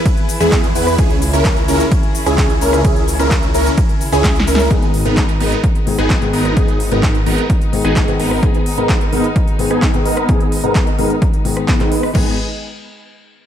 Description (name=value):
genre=EDM, festival progressive house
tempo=129 BPM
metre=4/4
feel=straight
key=G# minor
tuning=A4 = 442 Hz
part: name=warm chamber string section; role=sustained chords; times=0.0-12.4 s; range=C#3 to D#5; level=-26 LUFS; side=equal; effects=sidechain pumping
part: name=big-room dance drum kit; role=drums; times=0.1-12.2 s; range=crash cymbal, handclaps, hi-hat, ride cymbal, rim click, shaker, snare drum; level=-23 LUFS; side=equal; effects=overdrive
part: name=electronic kick drum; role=drums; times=0.1-12.2 s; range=none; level=-16 LUFS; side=equal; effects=overdrive
part: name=wide unison lead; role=arpeggios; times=0.4-4.7 s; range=G#4 to B4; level=-20 LUFS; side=equal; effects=sidechain pumping, ping-pong delay
part: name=big supersaw lead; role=riff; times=0.4-12.3 s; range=B3 to B4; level=-19 LUFS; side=right 1 dB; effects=phaser, sidechain pumping, low-pass filter, ping-pong delay
part: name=wide detuned saw bass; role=bass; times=0.4-8.4, 12.2-12.4 s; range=G#1 to E2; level=-20 LUFS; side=equal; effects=chorus, sidechain pumping
part: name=felt-muted upright piano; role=accompaniment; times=4.7-12.3 s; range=G#2 to G#4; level=-21 LUFS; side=left 5 dB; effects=sidechain pumping, ping-pong delay
room=little or no reverb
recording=none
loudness=-12 LUFS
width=side -10 dB against mid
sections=0.0-4.7 A section; 4.7-12.1 B section; 12.1-13.5 C section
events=drop 0.0-4.7; drum fill 4.2-4.7; filter sweep on supersaw synth 4.7-12.1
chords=0.0 E; 1.0 C#m; 4.7 G#m